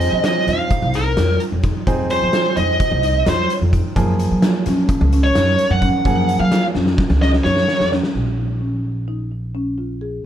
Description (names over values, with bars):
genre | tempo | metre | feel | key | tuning
progressive instrumental, band music in an uneven meter | 258 BPM (eighths) | 9/8 | straight | Gb lydian | A4 = 440 Hz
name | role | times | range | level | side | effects
high-gain lead guitar | melody | 0.0-7.9 s | Bb4 to Gb5 | -19 LUFS | right 1 dB | distortion
warm grand piano | accompaniment | 0.0-8.1 s | F3 to Ab4 | -27 LUFS | right 2 dB | none
marimba with soft mallets | arpeggios | 0.0-10.2 s | F3 to Ab4 | -24 LUFS | left 1 dB | digital delay
upright bass | bass | 0.0-10.2 s | Bb1 to Gb3 | -19 LUFS | equal | none
oversized low-tuned drum kit | drums | 0.0-8.1 s | hi-hat, kick drum, snare drum | -21 LUFS | equal | none
room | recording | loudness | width
light reverb | dark, warm production | -15 LUFS | side -10 dB against mid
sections
0.0-8.1 A section; 8.1-10.3 B section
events
lead electric guitar solo 0.0-8.1; drum fill 6.8-8.1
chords
0.0 Fm7; 4.0 Gbmaj7; 8.1 Bbm